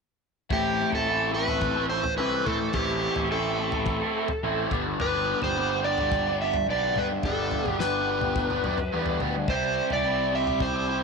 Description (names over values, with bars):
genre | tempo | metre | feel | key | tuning
psychedelic rock | 107 BPM | 4/4 | straight | A minor | A4 = 440 Hz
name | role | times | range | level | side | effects
overdriven slide guitar | melody | 0.5-11.0 s | G4 to E5 | -27 LUFS | equal | tape echo
raw garage guitar | riff | 0.5-11.0 s | G2 to A4 | -27 LUFS | right 1 dB | overdrive, phaser
fuzz picked electric bass | bass | 0.5-11.0 s | G1 to A2 | -33 LUFS | equal | overdrive
damped 70s drum kit | drums | 0.5-10.7 s | kick drum, snare drum, toms | -33 LUFS | left 2 dB | none
room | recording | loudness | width
small room ambience | 1960s-style stereo | -23 LUFS | side -4 dB against mid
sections
0.5-11.0 A section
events
none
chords
0.5 Am; 4.7 G; 9.5 C